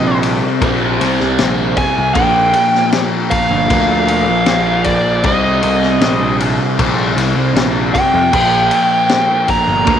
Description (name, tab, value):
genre	psychedelic rock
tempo	78 BPM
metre	4/4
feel	straight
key	C minor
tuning	A4 = 440 Hz
part	dark smooth lead guitar	melody	0.0-10.0 s	D5 to Bb5	-15 LUFS	right 1 dB	wah, overdrive, slapback echo
part	fuzz guitar	riff	0.0-10.0 s	Bb2 to C4	-17 LUFS	equal	distortion, phaser
part	fuzz picked electric bass	bass	0.0-10.0 s	G1 to F2	-18 LUFS	equal	overdrive
part	vintage drum kit	drums	0.2-10.0 s	crash cymbal, kick drum, ride cymbal, snare drum	-18 LUFS	left 3 dB	none
room	light reverb, small room ambience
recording	1960s-style stereo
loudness	-11 LUFS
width	side -9 dB against mid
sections	0.0-10.0 A section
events	none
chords	0.0 C7(no3); 2.2 Bb6; 5.2 Cm7; 8.3 Bb5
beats	0.62 1.39 | 2.16 2.93 3.71 4.48 | 5.25 6.02 6.79 7.56 | 8.34 9.11 9.88